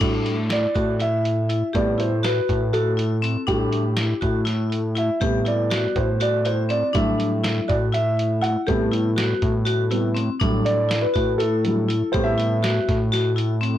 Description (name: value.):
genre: progressive instrumental, band music in an uneven meter.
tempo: 242 BPM (eighths).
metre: 7/8.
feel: straight.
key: A dorian.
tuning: A4 = 441 Hz.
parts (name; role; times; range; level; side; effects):
dark baby grand piano; accompaniment; 0.0-13.0 s; C3 to F#5; -24 LUFS; right 1 dB; none.
vibraphone with hard mallets; arpeggios; 0.0-13.8 s; C4 to G4; -26 LUFS; left 4 dB; digital delay.
fat analog bass; bass; 0.0-13.8 s; A2; -23 LUFS; equal; none.
lo-fi sampler-style drum kit; drums; 0.0-13.7 s; crash cymbal, hi-hat, kick drum, snare drum; -28 LUFS; equal; none.
room: moderate small room reverb, RT60 0.5 s.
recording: blown-out, overdriven recording, overdrive.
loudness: -19 LUFS.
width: side -12 dB against mid.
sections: 0.0-13.8 A section.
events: grand piano solo 0.0-13.8.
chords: 0.0 Em11/A; 1.7 Am7; 3.5 Em11/A; 5.2 Am7; 6.9 Em11/A; 8.7 Am7; 10.4 Em11/A; 12.1 Am7.